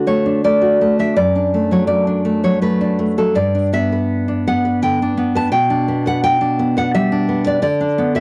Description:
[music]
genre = romantic piece for solo classical guitar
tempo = 83 BPM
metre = 3/4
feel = uneven beats, rubato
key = unclear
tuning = A4 = 438 Hz
[part]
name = nylon-string guitar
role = solo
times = 0.0-8.2 s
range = F#2 to A5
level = -16 LUFS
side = equal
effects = cassette tape
[sound]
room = moderate small room reverb, RT60 0.5 s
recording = home recording on cassette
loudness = -17 LUFS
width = mono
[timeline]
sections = 0.0-8.2 A section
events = none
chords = 0.0 D; 1.2 D/F#; 3.4 G; 5.5 G/B; 7.6 Bm/D

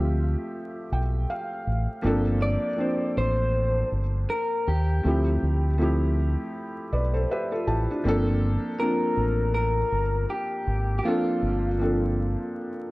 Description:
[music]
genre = lo-fi hip hop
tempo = 80 BPM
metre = 4/4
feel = swing 58% on 16ths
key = G minor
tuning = A4 = 440 Hz
[part]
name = electric guitar through a small old amp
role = melody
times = 0.0-12.9 s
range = F4 to D5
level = -28 LUFS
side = left 1 dB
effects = low-pass filter
[part]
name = felt-muted upright piano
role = accompaniment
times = 0.0-12.9 s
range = F3 to A5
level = -28 LUFS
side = equal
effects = low-pass filter
[part]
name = deep dub fingered electric bass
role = bass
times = 0.0-12.3 s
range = G1 to Eb2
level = -24 LUFS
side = equal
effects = none
[sound]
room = light reverb, studio ambience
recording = worn, warbling old tape, cassette tape, vinyl crackle, warbly pitch drift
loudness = -23 LUFS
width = side -20 dB against mid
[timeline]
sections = 0.0-12.9 A section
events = none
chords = 0.0 Dm11; 2.0 Gm11; 5.0 Dm11; 8.0 Gm11

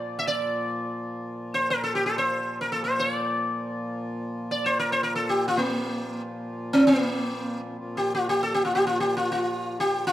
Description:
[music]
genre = indian classical, Hindustani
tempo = free time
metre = none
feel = none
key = Bb raga yaman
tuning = A4 = 442 Hz
[part]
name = sitar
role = melody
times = 0.0-10.1 s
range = Bb3 to E5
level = -23 LUFS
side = equal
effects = none
[part]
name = hand-pumped harmonium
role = drone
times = 0.0-10.1 s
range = Bb2 to F3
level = -33 LUFS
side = left 1 dB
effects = none
[sound]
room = moderate recital hall reverb, RT60 1.4 s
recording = close, detailed microphones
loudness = -24 LUFS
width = side -13 dB against mid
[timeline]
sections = 0.0-7.8 A section; 7.8-10.1 A section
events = none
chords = none

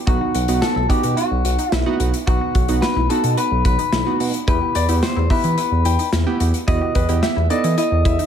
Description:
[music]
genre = synth-pop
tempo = 109 BPM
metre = 4/4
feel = straight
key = E harmonic minor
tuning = A4 = 440 Hz
[part]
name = electric guitar at the edge of break-up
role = melody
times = 0.1-8.3 s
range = F#4 to E5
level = -22 LUFS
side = left 3 dB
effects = tape echo
[part]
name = warm analog keys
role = accompaniment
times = 0.1-8.2 s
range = B3 to A4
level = -24 LUFS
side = right 6 dB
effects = chorus
[part]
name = analog pluck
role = arpeggios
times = 0.1-8.3 s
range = D#4 to G4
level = -29 LUFS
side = left 5 dB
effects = chorus, tape echo
[part]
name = smooth synth bass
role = bass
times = 0.1-8.2 s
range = B1 to E3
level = -20 LUFS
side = equal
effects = none
[part]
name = modern studio drum kit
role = drums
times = 0.1-8.3 s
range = hi-hat, kick drum, snare drum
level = -22 LUFS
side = equal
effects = none
[part]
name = clear concert grand piano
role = second line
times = 4.8-8.3 s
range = B4 to G5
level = -30 LUFS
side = left 5 dB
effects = tape echo
[sound]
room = light reverb, small room ambience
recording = none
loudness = -16 LUFS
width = side -8 dB against mid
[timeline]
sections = 0.0-8.3 A section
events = none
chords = 0.1 B; 4.5 Em

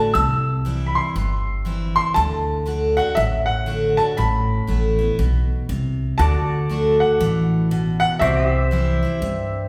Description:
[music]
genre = honky-tonk and classic country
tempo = 119 BPM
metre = 4/4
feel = swing 62% on 8ths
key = D mixolydian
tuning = A4 = 440 Hz
[part]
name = bright upright piano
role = second line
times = 0.0-9.7 s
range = E5 to E6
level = -25 LUFS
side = equal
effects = none
[part]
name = picked steel-string acoustic guitar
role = accompaniment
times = 0.0-9.7 s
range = G2 to F#4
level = -24 LUFS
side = equal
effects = none
[part]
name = upright bass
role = bass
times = 0.1-9.7 s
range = G1 to G2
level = -25 LUFS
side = equal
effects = none
[part]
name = pedal steel guitar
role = sustained chords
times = 6.2-9.7 s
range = F#4 to E5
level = -29 LUFS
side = equal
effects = none
[sound]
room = wet large studio reverb, RT60 1.4 s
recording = band playing live in one room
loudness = -20 LUFS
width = mono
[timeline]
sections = 0.0-9.7 A section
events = upright piano solo 0.0-9.7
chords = 0.1 C; 2.2 D; 4.2 Asus2; 6.2 D; 8.2 C

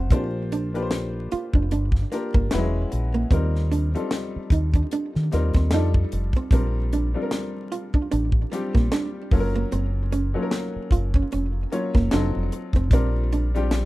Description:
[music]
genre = R&B, neo-soul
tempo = 75 BPM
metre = 4/4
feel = swing 57% on 16ths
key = Bb major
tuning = A4 = 440 Hz
[part]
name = archtop guitar, miked and amplified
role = second line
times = 0.0-13.8 s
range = Bb3 to F4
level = -29 LUFS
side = right 4 dB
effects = tape echo
[part]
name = clear upright piano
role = accompaniment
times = 0.0-13.9 s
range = F#3 to Db5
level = -29 LUFS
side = left 2 dB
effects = none
[part]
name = deep dub fingered electric bass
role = bass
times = 0.0-13.9 s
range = E1 to Eb3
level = -23 LUFS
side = equal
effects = none
[part]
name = tight funk drum kit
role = drums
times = 0.1-13.9 s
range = hi-hat, kick drum, snare drum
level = -21 LUFS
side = equal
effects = none
[sound]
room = little or no reverb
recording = rough home demo mix, vinyl crackle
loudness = -21 LUFS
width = side -18 dB against mid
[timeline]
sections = 0.0-13.9 A section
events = none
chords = 0.1 Bb69; 2.5 E69; 3.3 Eb69; 5.7 F13; 6.5 Bb69; 9.3 Gbmaj7; 12.1 F7b9; 12.9 Bb69

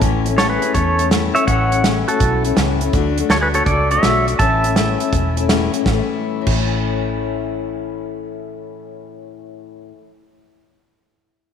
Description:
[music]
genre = honky-tonk and classic country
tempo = 164 BPM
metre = 4/4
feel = swing 66% on 8ths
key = A major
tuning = A4 = 438 Hz
[part]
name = picked steel-string acoustic guitar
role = accompaniment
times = 0.0-10.1 s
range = A2 to F#4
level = -21 LUFS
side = left 10 dB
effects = none
[part]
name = vintage muted fingered electric bass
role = bass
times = 0.0-9.9 s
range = E1 to E2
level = -21 LUFS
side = right 1 dB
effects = none
[part]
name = natural country drum kit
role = drums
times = 0.0-6.5 s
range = crash cymbal, hi-hat, kick drum, snare drum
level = -20 LUFS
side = right 2 dB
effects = none
[part]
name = pedal steel guitar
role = melody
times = 0.4-5.5 s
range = F#4 to A5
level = -18 LUFS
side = right 1 dB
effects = none
[sound]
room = moderate echo chamber reverb, RT60 2.2 s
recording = 1960s-style stereo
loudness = -15 LUFS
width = side -7 dB against mid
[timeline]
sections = 0.0-5.9 A section; 5.9-8.8 B section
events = none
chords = 0.0 A; 2.9 D; 4.4 A

